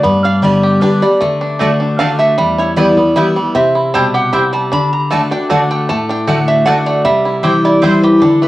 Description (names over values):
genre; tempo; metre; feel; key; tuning
bluegrass; 154 BPM; 3/4; straight; unclear; A4 = 439 Hz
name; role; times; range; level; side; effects
lap resonator guitar; melody; 0.0-8.5 s; A4 to B5; -16 LUFS; right 1 dB; none
picked steel-string acoustic guitar; accompaniment; 0.0-8.5 s; E2 to G4; -14 LUFS; left 1 dB; none
bluegrass banjo; arpeggios; 0.0-8.5 s; G3 to G4; -17 LUFS; right 1 dB; tape echo
mandolin; stabs; 1.6-7.9 s; A3 to A5; -18 LUFS; right 2 dB; none
room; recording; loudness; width
wet small room reverb, RT60 0.5 s; worn, warbling old tape, cassette tape, warbly pitch drift; -10 LUFS; side -16 dB against mid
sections
0.0-8.5 A section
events
none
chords
0.0 G; 1.2 D; 2.4 Em; 3.6 C; 4.7 D; 7.1 C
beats
| 0.04 0.43 0.82 | 1.21 1.60 1.99 | 2.38 2.77 3.17 | 3.56 3.94 4.33 | 4.72 5.11 5.50 | 5.89 6.28 6.67 | 7.05 7.44 7.83 | 8.22